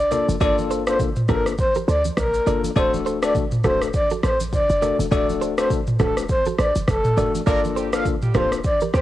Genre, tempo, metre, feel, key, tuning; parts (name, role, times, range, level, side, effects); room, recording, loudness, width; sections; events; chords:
afrobeats; 102 BPM; 4/4; swing 58% on 16ths; G minor; A4 = 440 Hz
breathy flute-like synth lead; melody; 0.0-9.0 s; A4 to F5; -22 LUFS; equal; chorus
short 808-style bass; bass; 0.0-9.0 s; D1 to D2; -25 LUFS; equal
bell-like tine electric piano; accompaniment; 0.1-8.6 s; A3 to A4; -25 LUFS; left 8 dB; auto-pan, cassette tape
direct-recorded clean electric guitar; riff; 0.1-9.0 s; F#4 to D5; -29 LUFS; right 7 dB; cassette tape, tape echo
afro-pop drum kit; drums; 0.1-9.0 s; kick drum, rim click, shaker, toms; -23 LUFS; equal; overdrive, cassette tape
congas; percussion; 0.1-8.9 s; -33 LUFS; right 7 dB
warm horn section; second line; 7.5-9.0 s; F3 to Bb4; -32 LUFS; right 9 dB; cassette tape
digital ambience; home recording on cassette; -18 LUFS; side -14 dB against mid
0.0-9.0 A section
0.0 Gm7; 2.8 D; 7.5 Gm7